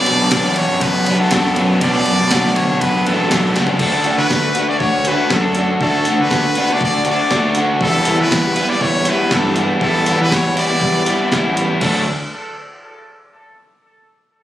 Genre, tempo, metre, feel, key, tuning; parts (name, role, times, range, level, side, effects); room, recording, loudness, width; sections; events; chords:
indie rock; 120 BPM; 4/4; straight; D major; A4 = 440 Hz
brilliant trumpet; melody; 0.0-12.1 s; A4 to D5; -19 LUFS; equal
crunchy overdriven guitar; riff; 0.0-12.0 s; B2 to F#4; -16 LUFS; left 1 dB
fuzz picked electric bass; bass; 0.1-12.1 s; A1 to E3; -21 LUFS; equal; overdrive
clean 12-bit digital drum machine; drums; 0.1-11.9 s; crash cymbal, hi-hat, kick drum, ride cymbal, snare drum, toms; -22 LUFS; equal; overdrive
group handclap; percussion; 0.3-3.4, 8.3-12.1 s; -26 LUFS; right 1 dB
light reverb; recorded on a phone in the room, club reverb, compression; -13 LUFS; side -12 dB against mid
0.0-3.8 A section; 3.8-11.8 B section; 11.8-13.8 C section
drum fill 3.6
0.0 Bm7; 3.8 D; 7.8 Em7; 11.8 D